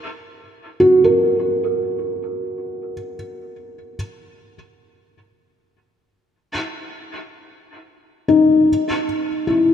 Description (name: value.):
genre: ambient.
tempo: free time.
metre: none.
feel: none.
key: F# mixolydian.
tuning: A4 = 439 Hz.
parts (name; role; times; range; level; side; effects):
felt-muted upright piano; solo; 0.8-4.0, 8.3-9.7 s; D#4 to A#4; -16 LUFS; left 1 dB; analog delay.
room: wet plate reverb, RT60 3.7 s.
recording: dreamy mix soaked in reverb.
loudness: -16 LUFS.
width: side -9 dB against mid.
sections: 0.0-8.7 A section; 8.7-9.7 B section.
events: none.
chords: 0.0 F#; 3.9 N.C..